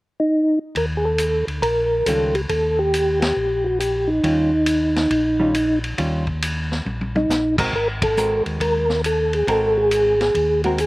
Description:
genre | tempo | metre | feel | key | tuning
soul jazz organ trio | 138 BPM | 4/4 | swing 66% on 8ths | Eb mixolydian | A4 = 440 Hz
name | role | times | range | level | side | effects
percussive tonewheel organ | melody | 0.2-10.9 s | Eb4 to Bb4 | -18 LUFS | equal | slow rotary speaker, chorus vibrato
mellow tonewheel organ | bass | 0.8-10.9 s | Ab1 to Eb2 | -25 LUFS | equal | chorus vibrato, slow rotary speaker
vintage drum kit | drums | 0.8-10.9 s | crash cymbal, hi-hat, kick drum, ride cymbal, snare drum, toms | -26 LUFS | equal | none
hollow-body jazz guitar | accompaniment | 2.1-10.8 s | Eb3 to Bb4 | -25 LUFS | right 1 dB | none
room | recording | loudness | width
little or no reverb | recorded outdoors, with no room sound | -17 LUFS | side -19 dB against mid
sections
0.8-10.9 A section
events
band accent 3.1, 7.9; drum fill 6.9-7.3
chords
0.0 N.C.; 0.8 Eb9; 7.7 Ab9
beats
0.32 | 0.75 1.19 1.62 2.06 | 2.50 2.93 3.37 3.80 | 4.24 4.67 5.11 5.55 | 5.98 6.42 6.86 7.29 | 7.73 8.17 8.60 9.04 | 9.48 9.91 10.35 10.79

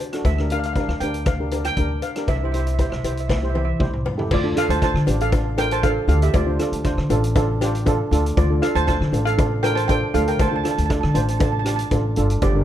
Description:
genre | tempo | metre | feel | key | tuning
calypso | 118 BPM | 4/4 | straight | unclear | A4 = 438 Hz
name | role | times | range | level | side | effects
steel pan | accompaniment | 0.1-12.6 s | D4 to C5 | -25 LUFS | right 1 dB | none
street-band drum kit | drums | 0.1-12.5 s | crash cymbal, hi-hat, kick drum, rim click, snare drum, toms | -25 LUFS | equal | none
upright bass | bass | 0.2-12.6 s | G1 to D3 | -22 LUFS | equal | none
cowbell | percussion | 0.2-12.5 s | none | -31 LUFS | left 6 dB | none
steel pan | melody | 0.3-12.6 s | F4 to A5 | -25 LUFS | right 2 dB | none
room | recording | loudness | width
little or no reverb | close, detailed microphones | -18 LUFS | side -11 dB against mid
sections
0.0-4.3 A section; 4.3-12.6 B section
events
drum fill 3.3-4.3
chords
0.2 Gm/D; 2.3 C; 4.3 Dm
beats
| 0.25 0.76 1.27 1.77 | 2.28 2.79 3.30 3.81 | 4.31 4.82 5.33 5.83 | 6.34 6.85 7.36 7.86 | 8.37 8.88 9.38 9.89 | 10.40 10.90 11.41 11.92 | 12.42

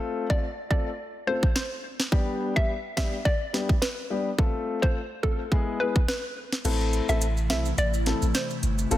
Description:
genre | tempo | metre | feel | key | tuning
dancehall | 106 BPM | 4/4 | swing 56% on 16ths | A minor | A4 = 440 Hz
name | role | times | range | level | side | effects
dark concert grand piano | accompaniment | 0.0-9.0 s | G3 to A4 | -30 LUFS | left 4 dB | sidechain pumping
hollow square pluck | melody | 0.3-8.8 s | A4 to E5 | -31 LUFS | equal | chorus, digital delay
island pop drum kit | drums | 0.3-9.0 s | crash cymbal, hi-hat, kick drum, snare drum | -26 LUFS | equal | overdrive
airy breathy pad | sustained chords | 7.1-9.0 s | C3 to F4 | -33 LUFS | left 2 dB | chorus, sidechain pumping
clean 808-style bass | bass | 6.6-9.0 s | F1 to B1 | -25 LUFS | equal | none
maracas | percussion | 6.6-9.0 s | none | -39 LUFS | right 8 dB | none
room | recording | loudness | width
light reverb | dense, heavily limited modern master | -24 LUFS | side -14 dB against mid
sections
0.0-6.6 A section; 6.6-9.0 B section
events
kick muted 6.6-9.0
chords
0.0 F; 2.1 G; 4.4 F; 5.5 E; 6.6 Am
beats
0.42 0.99 1.55 | 2.12 2.69 3.25 3.82 | 4.38 4.95 5.52 6.08 | 6.65 7.21 7.78 8.35 | 8.91

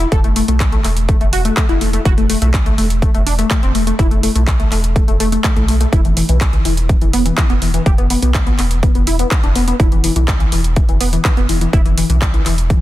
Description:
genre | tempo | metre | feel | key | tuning
progressive house | 124 BPM | 4/4 | straight | unclear | A4 = 440 Hz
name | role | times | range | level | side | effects
tight sequenced synth | arpeggios | 0.0-12.8 s | E3 to A4 | -19 LUFS | left 2 dB | chorus, phaser, sidechain pumping, dub echo
round analog bass | bass | 0.0-12.7 s | E1 to B1 | -17 LUFS | equal | sidechain pumping
big-room dance drum kit | drums | 0.0-12.8 s | handclaps, hi-hat | -22 LUFS | equal | overdrive
electronic kick drum | drums | 0.1-12.8 s | none | -14 LUFS | equal | overdrive
room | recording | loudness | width
digital ambience | dense, heavily limited modern master | -12 LUFS | side -15 dB against mid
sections
0.0-12.8 A section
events
none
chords
0.0 Asus2/E; 5.9 E5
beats
| 0.12 0.60 1.09 1.57 | 2.06 2.54 3.02 3.51 | 3.99 4.47 4.96 5.44 | 5.93 6.41 6.89 7.38 | 7.86 8.35 8.83 9.31 | 9.80 10.28 10.77 11.25 | 11.73 12.22 12.70

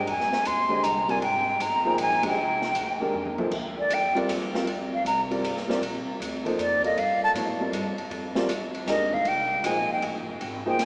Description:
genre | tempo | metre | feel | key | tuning
modal jazz | 157 BPM | 3/4 | swing 66% on 8ths | G phrygian | A4 = 438 Hz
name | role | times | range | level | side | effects
breathy concert flute | melody | 0.0-10.8 s | D5 to C6 | -28 LUFS | equal | none
warm upright piano | accompaniment | 0.0-10.9 s | D3 to F5 | -32 LUFS | equal | none
upright bass | bass | 0.0-10.9 s | F1 to A2 | -42 LUFS | equal | none
open jazz drum kit | drums | 0.1-10.9 s | crash cymbal, hi-hat, kick drum, ride cymbal, snare drum, toms | -36 LUFS | equal | none
room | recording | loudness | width
wet cathedral reverb, RT60 6.8 s | recorded in a church or concert hall, small speaker sound | -26 LUFS | mono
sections
0.0-3.5 A section; 3.5-10.9 B section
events
band accent 2.2; drum fill 3.1-3.5; flute solo 3.5-10.9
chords
0.0 Fm11; 3.5 Gm11; 8.1 Fm11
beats
| 0.07 0.45 0.83 | 1.22 1.60 1.98 | 2.37 2.75 3.13 | 3.52 3.90 4.28 | 4.67 5.05 5.43 | 5.82 6.20 6.58 | 6.96 7.35 7.73 | 8.11 8.50 8.88 | 9.26 9.65 10.03 | 10.41 10.79

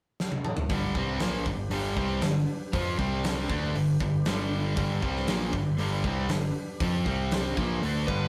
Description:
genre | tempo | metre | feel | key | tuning
classic rock | 118 BPM | 4/4 | straight | G major | A4 = 444 Hz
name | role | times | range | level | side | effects
huge arena drum kit | drums | 0.2-8.2 s | hi-hat, kick drum, snare drum, toms | -34 LUFS | equal | none
tonewheel organ | sustained chords | 0.7-8.3 s | G3 to C5 | -46 LUFS | equal | none
crunchy overdriven guitar | riff | 0.7-8.3 s | G2 to F4 | -34 LUFS | equal | none
tight distorted guitar | riff | 0.7-8.3 s | G2 to F4 | -34 LUFS | equal | distortion
modern bright picked electric bass | bass | 0.7-8.3 s | G1 to F2 | -34 LUFS | equal | none
overdriven slide guitar | melody | 8.1-8.3 s | B4 | -34 LUFS | equal | none
room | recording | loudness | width
moderate studio reverb, RT60 0.7 s | rough rehearsal-room recording, warm saturation | -28 LUFS | mono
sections
0.7-8.3 A section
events
drum fill 0.2-0.7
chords
0.0 N.C.; 0.7 G; 3.0 C5; 3.5 G; 7.1 C5; 7.6 G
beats
0.20 | 0.70 1.21 1.72 2.22 | 2.73 3.24 3.75 4.26 | 4.76 5.27 5.78 6.29 | 6.80 7.31 7.82

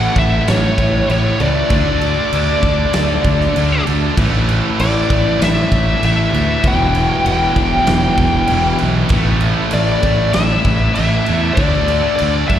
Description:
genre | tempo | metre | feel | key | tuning
hard rock | 97 BPM | 4/4 | straight | unclear | A4 = 440 Hz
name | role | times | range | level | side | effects
high-gain lead guitar | melody | 0.0-12.6 s | C#5 to G5 | -18 LUFS | left 2 dB | distortion, slapback echo
overdriven tonewheel organ | sustained chords | 0.0-12.6 s | E3 to E5 | -28 LUFS | right 1 dB | lush chorus
sludgy distorted guitar | riff | 0.0-12.6 s | E2 to D4 | -23 LUFS | left 8 dB | overdrive
tight distorted guitar | riff | 0.0-12.6 s | E2 to D4 | -24 LUFS | right 12 dB | distortion, slapback echo
tight distorted guitar | riff | 0.0-12.6 s | E2 to D4 | -24 LUFS | equal | distortion
fuzz fingered electric bass | bass | 0.0-12.6 s | E1 to F#2 | -17 LUFS | right 1 dB | overdrive
big rock drum kit | drums | 0.2-12.6 s | crash cymbal, kick drum, snare drum | -20 LUFS | right 1 dB | none
room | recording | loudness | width
little or no reverb | live gig heard through the venue's PA, recital hall reverb | -12 LUFS | side -10 dB against mid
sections
0.0-12.6 A section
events
none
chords
0.0 A; 1.7 D5; 4.2 A5; 6.6 Em; 9.1 A5; 11.6 D5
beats
0.48 1.09 | 1.71 2.33 2.94 3.56 | 4.18 4.79 5.41 6.03 | 6.64 7.26 7.88 8.50 | 9.11 9.73 10.35 10.97 | 11.58 12.20

